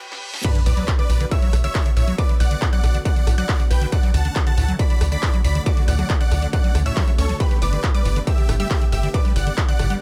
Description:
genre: uplifting trance.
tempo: 138 BPM.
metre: 4/4.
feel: straight.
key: B minor.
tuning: A4 = 441 Hz.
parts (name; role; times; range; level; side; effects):
reverse cymbal and sub drop; sound effects; 0.0-2.2 s; none; -33 LUFS; equal; none.
techno drum kit; drums; 0.1-10.0 s; crash cymbal, handclaps, hi-hat, rim click, snare drum; -33 LUFS; equal; overdrive.
big supersaw lead; melody; 0.4-9.9 s; D4 to B5; -31 LUFS; equal; sidechain pumping, digital delay.
unison pluck; second line; 0.4-9.9 s; B5 to B6; -36 LUFS; equal; sidechain pumping.
analog string pad; sustained chords; 0.4-10.0 s; D3 to G4; -37 LUFS; equal; ensemble chorus, sidechain pumping.
liquid acid bass; arpeggios; 0.4-10.0 s; A2 to C#4; -31 LUFS; equal; chorus, cassette tape, sidechain pumping, digital delay.
electronic kick drum; drums; 0.4-9.7 s; none; -22 LUFS; equal; distortion, overdrive.
tight sequencer bass; bass; 0.7-10.0 s; G1 to D2; -22 LUFS; equal; sidechain pumping.
room: little or no reverb.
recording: high-pass filter.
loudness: -19 LUFS.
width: mono.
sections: 0.4-10.0 A section.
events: reverse cymbal 0.0-0.4; stop 0.0-0.4; drum fill 0.1-0.4; drop 0.4-10.0; impact 0.4-2.2.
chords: 0.4 Bm7; 3.9 Dmaj7; 7.4 Gadd9.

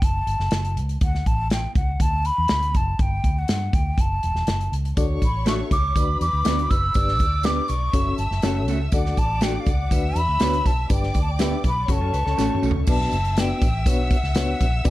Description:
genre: uptempo 1960s-style soul.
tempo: 121 BPM.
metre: 4/4.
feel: straight.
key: unclear.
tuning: A4 = 441 Hz.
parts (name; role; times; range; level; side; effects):
breathy hollow jazz flute; melody; 0.0-14.9 s; F5 to E6; -26 LUFS; left 1 dB; none.
vintage muted fingered electric bass; bass; 0.0-14.9 s; E1 to G2; -24 LUFS; equal; none.
natural country drum kit; drums; 0.0-14.9 s; crash cymbal, hi-hat, kick drum, snare drum, toms; -23 LUFS; equal; none.
rich studio violin section; second line; 5.0-14.9 s; B4 to E6; -34 LUFS; right 1 dB; none.
reed electric piano; accompaniment; 5.0-14.9 s; B3 to E5; -29 LUFS; left 4 dB; fast tremolo.
tambourine; percussion; 5.0-14.9 s; none; -42 LUFS; right 16 dB; none.
electric guitar through a small old amp; stabs; 5.5-12.7 s; A3 to B4; -29 LUFS; right 4 dB; none.
electric guitar through a small old amp; riff; 11.9-12.8 s; A3 to B4; -32 LUFS; left 8 dB; analog chorus.
room: small room reverb.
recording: dark, warm production.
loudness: -19 LUFS.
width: side -16 dB against mid.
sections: 0.0-12.9 A section; 12.9-14.9 B section.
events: drum fill 12.4-12.9.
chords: 0.0 F#m; 1.0 D5; 2.0 Bm/D; 3.0 G5; 4.0 F#m; 5.0 D; 6.0 Bm/D; 6.9 G; 7.9 F#m; 8.9 D; 9.9 Bm/D; 10.9 G; 11.9 F#m; 12.9 Bm.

